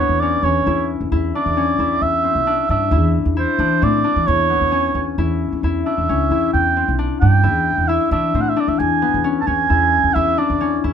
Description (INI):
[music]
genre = contemporary instrumental, chamber music in an uneven meter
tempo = 133 BPM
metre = 5/4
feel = straight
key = unclear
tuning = A4 = 439 Hz
[part]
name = warm oboe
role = melody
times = 0.0-10.8 s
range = C5 to A5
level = -18 LUFS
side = right 4 dB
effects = none
[part]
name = concert harp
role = arpeggios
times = 0.0-10.9 s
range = B3 to E4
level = -20 LUFS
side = left 8 dB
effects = none
[part]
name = upright bass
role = bass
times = 0.0-10.9 s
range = B1 to E3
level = -20 LUFS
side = right 1 dB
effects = none
[sound]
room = light reverb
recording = minimal, uncompressed stereo recording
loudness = -15 LUFS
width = side -8 dB against mid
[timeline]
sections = 0.0-10.9 A section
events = none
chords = 0.0 C#m7/E; 2.0 Cmaj7; 4.3 C#m7; 6.5 Cmaj7; 8.8 E7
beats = 0.21 0.66 1.11 1.56 | 2.02 2.47 2.92 3.37 3.82 | 4.27 4.72 5.18 5.63 6.08 | 6.53 6.98 7.43 7.89 8.34 | 8.79 9.24 9.70 10.15 10.60